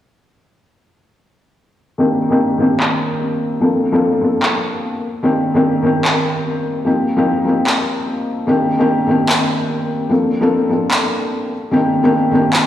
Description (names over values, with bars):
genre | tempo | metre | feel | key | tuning
future bass | 148 BPM | 4/4 | swing 56% on 16ths, half-time | C dorian | A4 = 442 Hz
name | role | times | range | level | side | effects
felt-muted upright piano | accompaniment | 2.0-12.7 s | Eb3 to A4 | -14 LUFS | left 1 dB | low-pass filter, digital delay
electronic handclaps | drums | 2.8-12.6 s | none | -18 LUFS | equal | low-pass filter on snare, small room ambience
room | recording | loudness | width
wet lush hall reverb, RT60 1.8 s, studio ambience | played on a big sound system in a bare room, stone room reverb, small room reverb | -14 LUFS | side -11 dB against mid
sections
2.0-12.7 A section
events
filter sweep on felt piano 2.0-12.7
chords
2.0 Cm7; 3.6 Bbmaj7; 5.0 Cm7; 6.9 F7sus4; 8.5 Cm7; 10.1 Bbmaj7; 11.5 Cm7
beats
| 1.99 2.40 2.80 3.21 | 3.62 4.02 4.42 4.83 | 5.24 5.64 6.05 6.45 | 6.86 7.26 7.67 8.07 | 8.48 8.88 9.29 9.70 | 10.10 10.51 10.91 11.32 | 11.72 12.13 12.53